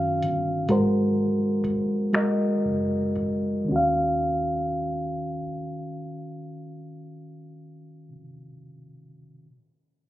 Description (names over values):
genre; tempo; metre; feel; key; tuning
slow six-eight R&B; 37-44 BPM (dotted quarters); 6/8; straight; Eb minor; A4 = 437 Hz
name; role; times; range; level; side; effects
reed electric piano; accompaniment; 0.0-9.5 s; Eb3 to F5; -24 LUFS; equal; none
vintage muted fingered electric bass; bass; 0.0-8.1 s; Gb1 to Gb2; -34 LUFS; equal; none
booming analog drum machine; drums; 0.2-3.4 s; finger snaps, hi-hat, kick drum; -31 LUFS; equal; none
room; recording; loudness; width
light reverb; recorded on a phone in the room, club reverb, low-pass filter; -22 LUFS; side -14 dB against mid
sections
0.0-3.7 A section; 3.7-7.0 B section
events
slowing down 0.0-3.7; filter sweep 0.0-3.7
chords
0.0 Ebm9; 0.7 Ab9; 3.7 Ebm9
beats
| 0.69 2.13 | 3.69 5.32